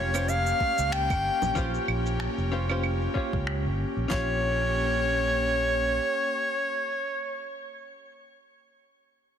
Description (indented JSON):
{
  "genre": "sunset chillout",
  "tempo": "94 BPM",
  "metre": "4/4",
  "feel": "swing 56% on 16ths",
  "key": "Bb dorian",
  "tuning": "A4 = 439 Hz",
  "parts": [
    { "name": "breathy soprano saxophone", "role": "melody", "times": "0.0-7.4 s", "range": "Db5 to G5", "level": "-27 LUFS", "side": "equal", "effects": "tape echo, shimmer reverb" },
    { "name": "archtop guitar, miked and amplified", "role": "accompaniment", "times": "0.0-8.1 s", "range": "Db4 to Db5", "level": "-35 LUFS", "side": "equal", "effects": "auto-pan, low-pass filter, tape echo, shimmer reverb" },
    { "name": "airy breathy pad", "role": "sustained chords", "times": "0.0-7.4 s", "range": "Bb3 to G4", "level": "-34 LUFS", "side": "left 1 dB", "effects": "chorus, vintage 12-bit sampler grit, shimmer reverb" },
    { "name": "fingered electric bass", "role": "bass", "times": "0.0-6.0 s", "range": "F1 to Db2", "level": "-30 LUFS", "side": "equal", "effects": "none" },
    { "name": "electronic claves, shaker and finger snaps", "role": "drums", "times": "0.1-4.1 s", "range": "none", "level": "-36 LUFS", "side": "right 4 dB", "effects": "overdrive, low-pass filter on hats, low-pass filter on perc, soft clipping on snare, low-pass filter on snare, low-pass filter on toms, low-pass filter on cymbals" },
    { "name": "smooth R&B drum kit", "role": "drums", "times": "0.6-4.3 s", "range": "handclaps, kick drum, snare drum", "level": "-30 LUFS", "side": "equal", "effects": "overdrive" },
    { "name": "congas", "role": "percussion", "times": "0.6-1.5 s", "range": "none", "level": "-40 LUFS", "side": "right 6 dB", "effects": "none" }
  ],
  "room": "moderate concert hall reverb, RT60 2.2 s",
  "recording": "dense, heavily limited modern master",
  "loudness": "-24 LUFS",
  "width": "side -8 dB against mid",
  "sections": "0.0-4.1 A section; 4.1-6.7 B section",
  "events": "filter sweep on drum 0.0-4.1",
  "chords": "0.0 Bbm69; 4.1 Bbm6"
}